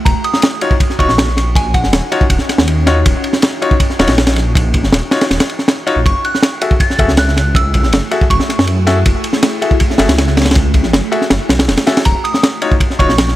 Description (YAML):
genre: drum and bass, jungle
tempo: 160 BPM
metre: 4/4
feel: straight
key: Eb minor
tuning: A4 = 440 Hz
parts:
  - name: ethereal airy pad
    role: sustained chords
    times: 0.0-13.4 s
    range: A3 to Ab4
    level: -24 LUFS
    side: equal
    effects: ensemble chorus, built-in reverb, phaser
  - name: soft synth bell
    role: melody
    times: 0.1-2.1, 6.1-8.6, 12.1-13.1 s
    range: Gb5 to A6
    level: -20 LUFS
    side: right 1 dB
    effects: chorus, vintage 12-bit sampler grit, dub echo
  - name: dark detuned saw bass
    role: bass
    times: 0.1-13.4 s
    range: Eb1 to Gb2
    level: -15 LUFS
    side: equal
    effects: none
  - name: crunchy breakbeat drum kit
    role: drums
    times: 0.1-13.4 s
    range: kick drum, ride cymbal, snare drum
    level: -13 LUFS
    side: equal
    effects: none
  - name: clear grand piano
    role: stabs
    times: 0.6-13.1 s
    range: Eb4 to Fb5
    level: -19 LUFS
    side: left 3 dB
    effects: vintage 12-bit sampler grit, dub echo
room: studio reverb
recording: none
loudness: -10 LUFS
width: side -15 dB against mid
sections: 0.0-12.1 A section; 12.1-13.4 A section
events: drop 0.0-12.1, 12.1-13.4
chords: 0.1 Ebm9; 6.1 Gbm9; 12.1 Ebm9